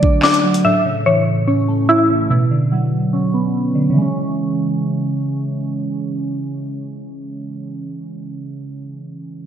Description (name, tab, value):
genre	hip hop, drill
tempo	145 BPM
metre	4/4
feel	half-time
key	C# phrygian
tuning	A4 = 440 Hz
part	glassy digital keys	accompaniment	0.0-9.5 s	A2 to D5	-18 LUFS	right 2 dB	chorus, low-pass filter
part	mallet-like synth pluck	arpeggios	0.0-2.3 s	D4 to A5	-16 LUFS	left 1 dB	chorus, low-pass filter, analog delay
part	drill drum kit	drums	0.0-0.6 s	handclaps, hi-hat, kick drum, snare drum	-18 LUFS	equal	none
room	wet lush hall reverb, RT60 1.7 s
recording	dreamy mix soaked in reverb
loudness	-15 LUFS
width	side -9 dB against mid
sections	0.0-4.0 A section; 4.0-7.3 B section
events	filter sweep 0.0-4.0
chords	0.0 D; 0.6 A; 2.3 Bmadd9; 4.0 C#m